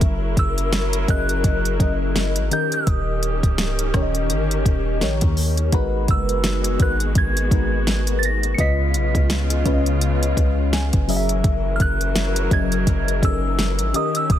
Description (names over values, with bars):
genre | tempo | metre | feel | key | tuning
contemporary R&B | 84 BPM | 4/4 | swing 58% on 16ths | unclear | A4 = 441 Hz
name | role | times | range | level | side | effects
mellow FM electric piano | accompaniment | 0.0-14.4 s | C#3 to G#5 | -25 LUFS | left 3 dB | chorus, phaser
muted studio string section | sustained chords | 0.0-14.4 s | C#3 to A#4 | -29 LUFS | left 1 dB | sidechain pumping
warm 808-style bass | bass | 0.0-14.4 s | C#1 to D#2 | -22 LUFS | equal | none
smooth R&B drum kit | drums | 0.0-14.4 s | hi-hat, kick drum, rim click, snare drum | -21 LUFS | equal | none
glassy synth bell | melody | 0.4-14.4 s | D#6 to C#7 | -27 LUFS | right 2 dB | chorus, ping-pong delay
room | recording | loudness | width
little or no reverb | dense, heavily limited modern master | -18 LUFS | side -11 dB against mid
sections
0.0-14.4 A section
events
FM electric piano fill 10.4-11.4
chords
0.0 F#7; 2.5 D#7; 5.7 G#m7; 8.6 C#7; 11.1 F#7